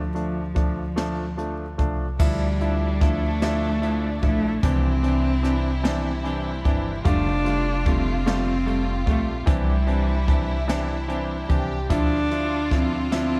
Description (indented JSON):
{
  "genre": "six-eight pop ballad",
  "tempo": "49 BPM (dotted quarters)",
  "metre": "6/8",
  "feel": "straight",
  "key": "unclear",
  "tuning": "A4 = 440 Hz",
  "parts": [
    { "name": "warm cello", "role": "melody", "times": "0.0-13.4 s", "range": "F3 to D4", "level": "-29 LUFS", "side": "equal", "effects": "tape echo" },
    { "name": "upright bass", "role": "bass", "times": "0.0-13.4 s", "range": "F1 to D2", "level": "-28 LUFS", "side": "equal", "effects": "none" },
    { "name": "warm concert grand piano", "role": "accompaniment", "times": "0.1-13.4 s", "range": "E3 to F4", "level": "-31 LUFS", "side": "equal", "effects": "none" },
    { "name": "jazz brush drum kit", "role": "drums", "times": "0.2-13.3 s", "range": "crash cymbal, hi-hat, kick drum, snare drum", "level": "-27 LUFS", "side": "equal", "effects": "none" },
    { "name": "warm studio violin section", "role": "second line", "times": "2.2-13.4 s", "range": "D4 to G4", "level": "-36 LUFS", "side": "equal", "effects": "slapback echo" },
    { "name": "twelve-string electric guitar", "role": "arpeggios", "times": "2.2-13.4 s", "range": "C3 to A4", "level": "-39 LUFS", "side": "equal", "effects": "spring reverb, tape echo" }
  ],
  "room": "light reverb, studio ambience",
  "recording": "vinyl crackle",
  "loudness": "-23 LUFS",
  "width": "mono",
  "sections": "0.0-2.2 A section; 2.2-13.4 B section",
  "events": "none",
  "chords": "0.0 Dm; 2.2 Dmadd9; 4.6 Cadd9; 7.1 Fadd9; 9.5 Cadd9; 11.9 Dmadd9"
}